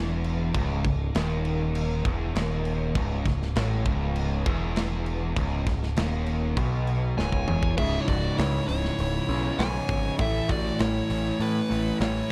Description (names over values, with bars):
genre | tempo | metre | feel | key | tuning
heavy metal | 100 BPM | 4/4 | straight | C# minor | A4 = 439 Hz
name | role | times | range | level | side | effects
distorted electric guitar | riff | 0.0-12.3 s | C#2 to A3 | -33 LUFS | equal | distortion
sludgy distorted guitar | riff | 0.0-12.3 s | C#2 to A3 | -34 LUFS | equal | overdrive
growling picked electric bass | bass | 0.0-12.2 s | C#1 to A2 | -32 LUFS | equal | overdrive
tight metal drum kit | drums | 0.2-12.2 s | crash cymbal, hi-hat, kick drum, snare drum, toms | -33 LUFS | equal | none
dark smooth lead guitar | melody | 7.2-12.3 s | B4 to G#5 | -34 LUFS | equal | overdrive
high-gain lead guitar | second line | 7.2-12.3 s | E4 to C#5 | -38 LUFS | equal | distortion, tape echo
room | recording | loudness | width
studio reverb | dark, warm production | -26 LUFS | mono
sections
0.0-7.8 A section; 7.8-12.3 B section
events
drum fill 7.2-7.8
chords
0.0 C#m; 10.2 A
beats
| 0.55 1.15 1.75 2.35 | 2.96 3.56 4.16 4.76 | 5.37 5.97 6.58 7.18 | 7.78 8.38 8.99 9.59 | 10.19 10.80 11.40 12.00